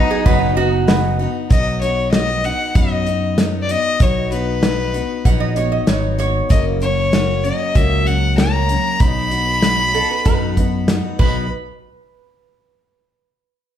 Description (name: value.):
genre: honky-tonk and classic country.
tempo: 96 BPM.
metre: 4/4.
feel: straight.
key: B major.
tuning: A4 = 439 Hz.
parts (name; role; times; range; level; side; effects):
clear fiddle; melody; 0.0-11.5 s; D#4 to B5; -20 LUFS; left 2 dB; plate reverb.
lap resonator guitar; second line; 0.0-0.9, 5.3-11.5 s; F#4 to F#5; -23 LUFS; right 5 dB; none.
picked steel-string acoustic guitar; accompaniment; 0.0-11.5 s; F#2 to F#4; -24 LUFS; left 4 dB; none.
warm upright piano; accompaniment; 0.0-1.3 s; F#4 to F#5; -23 LUFS; right 4 dB; none.
pedal steel guitar; sustained chords; 0.0-1.5 s; none; barely audible; none; none.
warm symphonic string section; sustained chords; 0.0-1.5 s; F#3 to D#4; -29 LUFS; equal; none.
fingered electric bass; bass; 0.3-11.5 s; F#1 to F#2; -21 LUFS; equal; none.
natural country drum kit; drums; 0.3-11.3 s; crash cymbal, hi-hat, kick drum, snare drum; -17 LUFS; equal; none.
room: moderate large studio reverb, RT60 0.9 s.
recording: heard from further back in the room.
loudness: -14 LUFS.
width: side -10 dB against mid.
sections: 0.0-1.5 A section; 1.5-11.5 B section; 11.5-13.8 C section.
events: none.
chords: 0.0 B; 6.5 F#; 9.0 B; 11.5 N.C..